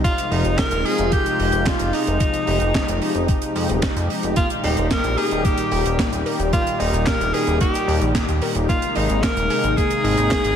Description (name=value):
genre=synthwave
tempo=111 BPM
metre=4/4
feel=straight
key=unclear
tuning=A4 = 438 Hz
part: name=warm tenor saxophone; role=melody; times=0.0-10.6 s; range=Eb4 to Bb4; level=-23 LUFS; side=equal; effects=diffuse ambient delay, shimmer reverb
part: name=warm analog pad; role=sustained chords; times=0.0-10.6 s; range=Bb2 to G4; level=-23 LUFS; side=left 1 dB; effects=chorus, sidechain pumping, shimmer reverb
part: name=chorused synth bass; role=bass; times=0.0-10.6 s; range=Eb1 to F2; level=-22 LUFS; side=equal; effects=tube saturation
part: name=compact cocktail drum kit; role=drums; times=0.0-10.6 s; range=cabasa, handclaps, hi-hat, snare drum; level=-27 LUFS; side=right 1 dB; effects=none
part: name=electronic kick drum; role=drums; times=0.0-10.4 s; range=none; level=-22 LUFS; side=equal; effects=overdrive
part: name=analog pluck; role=arpeggios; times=4.4-10.4 s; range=Bb3 to Bb4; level=-30 LUFS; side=right 1 dB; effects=chorus, diffuse ambient delay, shimmer reverb
room=wet lush hall reverb, RT60 1.9 s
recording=dreamy mix soaked in reverb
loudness=-17 LUFS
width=side -8 dB against mid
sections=0.0-10.6 A section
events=none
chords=0.0 Fm7; 4.4 Eb; 8.7 Abadd9